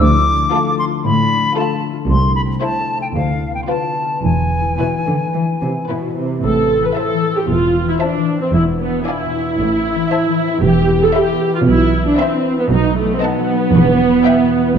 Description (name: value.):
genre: cinematic, playful, whimsical film cue.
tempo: 115 BPM.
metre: 4/4.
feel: straight.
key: A minor.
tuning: A4 = 440 Hz.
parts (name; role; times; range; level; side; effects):
silver concert flute; second line; 0.0-5.9 s; F5 to D6; -19 LUFS; left 2 dB; none.
concert harp; arpeggios; 0.0-14.8 s; E2 to B4; -21 LUFS; left 8 dB; none.
muted studio cello section; bass; 0.0-14.1 s; C2 to E3; -19 LUFS; right 2 dB; none.
muted studio double bass section; bass; 0.0-14.1 s; E1 to D2; -20 LUFS; right 4 dB; none.
muted studio violin section; melody; 0.5-14.6 s; A4 to B5; -28 LUFS; left 6 dB; none.
muted studio violin section; second line; 0.5-14.6 s; E4 to F#5; -25 LUFS; left 2 dB; none.
muted studio viola section; accompaniment; 0.5-14.8 s; A3 to B4; -16 LUFS; right 2 dB; none.
room: wet scoring stage reverb, RT60 1.7 s.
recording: dark, warm production.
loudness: -14 LUFS.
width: side -7 dB against mid.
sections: 0.0-6.4 A section; 6.4-14.8 B section.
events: none.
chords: 0.0 Dm; 2.1 Am/C; 3.1 Bdim/D; 4.2 E; 6.4 Am; 8.5 E7b9; 9.6 Am; 10.6 E5; 12.7 B7; 13.7 Em.